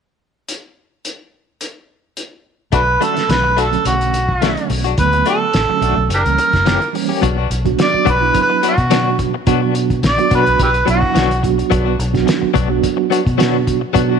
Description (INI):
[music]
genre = straight-eighth soul blues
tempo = 107 BPM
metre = 4/4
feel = swing 54% on 16ths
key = B minor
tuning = A4 = 439 Hz
[part]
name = cloth-damped thuddy drum kit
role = drums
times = 0.5-14.1 s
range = hi-hat, kick drum, snare drum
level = -21 LUFS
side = left 1 dB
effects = none
[part]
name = mellow harmonica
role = melody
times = 2.7-11.4 s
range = D4 to D5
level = -16 LUFS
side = right 1 dB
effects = overdrive, slapback echo
[part]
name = direct-recorded clean electric guitar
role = stabs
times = 2.7-14.2 s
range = E3 to G4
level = -21 LUFS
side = left 13 dB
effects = tremolo
[part]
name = vintage muted fingered electric bass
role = bass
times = 2.7-14.2 s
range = F#1 to B2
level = -19 LUFS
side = equal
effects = none
[part]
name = mellow reed electric piano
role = accompaniment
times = 3.0-14.2 s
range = D3 to F#4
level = -20 LUFS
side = right 14 dB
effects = fast tremolo
[sound]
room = light reverb, small room reverb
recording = 1960s-style stereo with parts hard left and right, lossy compression artefacts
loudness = -13 LUFS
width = side -6 dB against mid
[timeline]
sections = 0.5-2.7 A section; 2.7-7.2 B section; 7.2-14.2 C section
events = none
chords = 0.5 N.C.; 2.7 Bm7; 6.1 F#7b9; 7.2 Bm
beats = | 0.48 1.04 1.61 2.17 | 2.73 3.29 3.86 4.42 | 4.98 5.54 6.11 6.67 | 7.23 7.79 8.35 8.91 | 9.47 10.03 10.59 11.15 | 11.71 12.27 12.83 13.39 | 13.95